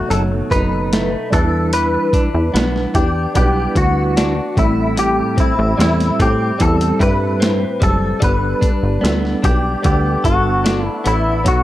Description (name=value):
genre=indie pop, bedroom pop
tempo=74 BPM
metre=4/4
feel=straight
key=G major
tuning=A4 = 439 Hz
part: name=direct-recorded clean electric guitar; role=melody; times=0.0-11.6 s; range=E4 to B4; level=-19 LUFS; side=left 1 dB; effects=ensemble chorus, tape echo
part: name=direct-recorded clean electric guitar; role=accompaniment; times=0.0-11.6 s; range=A2 to A4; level=-24 LUFS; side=left 2 dB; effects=wide subtle chorus, warbly pitch drift
part: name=plucky analog bass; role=bass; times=0.0-11.6 s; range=F#1 to A2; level=-18 LUFS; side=equal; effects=none
part: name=percussive tonewheel organ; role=accompaniment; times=0.1-11.6 s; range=F#3 to B4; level=-23 LUFS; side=right 4 dB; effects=fast rotary speaker, cassette tape
part: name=boom bap sampler-style drum kit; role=drums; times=0.1-11.6 s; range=hi-hat, kick drum, snare drum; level=-18 LUFS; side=equal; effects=none
room=light reverb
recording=dark, warm production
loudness=-14 LUFS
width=side -14 dB against mid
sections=0.0-11.6 A section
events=none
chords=0.0 B7; 1.3 Em7; 4.6 Am7; 8.2 Gadd9